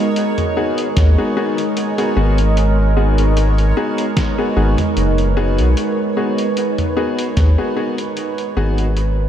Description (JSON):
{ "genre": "ambient dub", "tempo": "75 BPM", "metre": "4/4", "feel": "swing 54% on 16ths", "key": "G# minor", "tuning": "A4 = 440 Hz", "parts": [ { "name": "deep dark ambient pad", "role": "sustained chords", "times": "0.0-9.3 s", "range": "G#3 to D#5", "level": "-20 LUFS", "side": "right 2 dB", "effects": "chorus, built-in reverb" }, { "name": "clear upright piano", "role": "stabs", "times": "0.0-8.8 s", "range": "B3 to G#4", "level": "-22 LUFS", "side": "left 4 dB", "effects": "dub echo" }, { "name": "bubbling stepped-filter texture", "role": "texture", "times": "0.0-9.3 s", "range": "C#5", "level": "-30 LUFS", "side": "right 5 dB", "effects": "chorus, built-in reverb" }, { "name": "lo-fi sampler-style drum kit", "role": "drums", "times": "0.2-9.1 s", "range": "hi-hat, snare drum, toms", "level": "-26 LUFS", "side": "equal", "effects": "studio reverb, dub echo" }, { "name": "round analog bass", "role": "bass", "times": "1.0-9.3 s", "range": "F#1 to D#2", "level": "-14 LUFS", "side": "equal", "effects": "none" }, { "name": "electronic kick drum", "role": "drums", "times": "1.0-7.5 s", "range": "none", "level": "-21 LUFS", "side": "equal", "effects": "studio reverb" } ], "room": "moderate huge ambient reverb, RT60 7.4 s", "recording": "dreamy mix soaked in reverb", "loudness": "-14 LUFS", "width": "side -10 dB against mid", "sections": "0.0-9.3 A section", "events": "fade-out 6.8-9.3", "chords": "0.0 G#m7" }